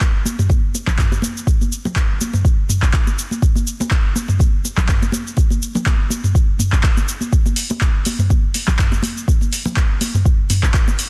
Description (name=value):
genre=house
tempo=123 BPM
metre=4/4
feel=swing 55% on 16ths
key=none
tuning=none
part: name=afro-pop drum kit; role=drums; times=0.0-11.1 s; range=handclaps, hi-hat, shaker, toms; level=-23 LUFS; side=equal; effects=none
part: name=electronic kick drum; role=drums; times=0.0-10.8 s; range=none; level=-18 LUFS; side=equal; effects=none
part: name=congas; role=percussion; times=0.3-11.0 s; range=none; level=-27 LUFS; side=equal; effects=none
room=little or no reverb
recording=dense, heavily limited modern master, lossy compression artefacts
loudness=-17 LUFS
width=mono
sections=0.0-11.1 A section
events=none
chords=none